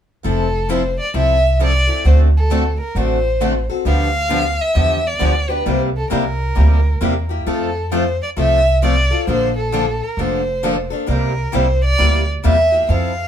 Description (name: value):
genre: acoustic string swing (jazz manouche)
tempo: 133 BPM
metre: 4/4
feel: swing 64% on 8ths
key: F major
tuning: A4 = 438 Hz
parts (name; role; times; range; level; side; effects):
- picked steel-string acoustic guitar; accompaniment; 0.2-13.1 s; C3 to A4; -22 LUFS; left 5 dB; none
- picked swing-style acoustic guitar; accompaniment; 0.2-13.1 s; C3 to A4; -26 LUFS; right 5 dB; none
- upright bass; bass; 0.2-13.3 s; F1 to F2; -17 LUFS; equal; none
- warm violin; melody; 0.3-13.3 s; A4 to F5; -19 LUFS; equal; none
room: moderate studio reverb, RT60 0.6 s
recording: band playing live in one room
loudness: -14 LUFS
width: side -9 dB against mid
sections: 0.2-13.3 A section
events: none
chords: 0.2 Fmaj7; 2.0 D7; 3.9 G7/D; 5.7 C7; 7.5 F; 9.3 Bbmaj7; 11.1 C7